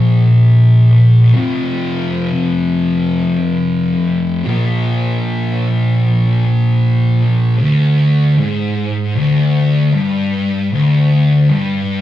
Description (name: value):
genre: metal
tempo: 77 BPM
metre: 4/4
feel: straight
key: unclear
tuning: A4 = 439 Hz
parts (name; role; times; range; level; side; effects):
- thick fuzz guitar; solo; 0.0-12.0 s; D2 to Bb3; -11 LUFS; left 1 dB; distortion
room: wet stone room reverb, RT60 1.1 s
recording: rough rehearsal-room recording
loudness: -11 LUFS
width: side -13 dB against mid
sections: 0.0-7.6 A section; 7.6-12.0 B section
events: none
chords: 0.0 Bb5; 1.4 F5; 4.5 Bb5; 7.6 N.C.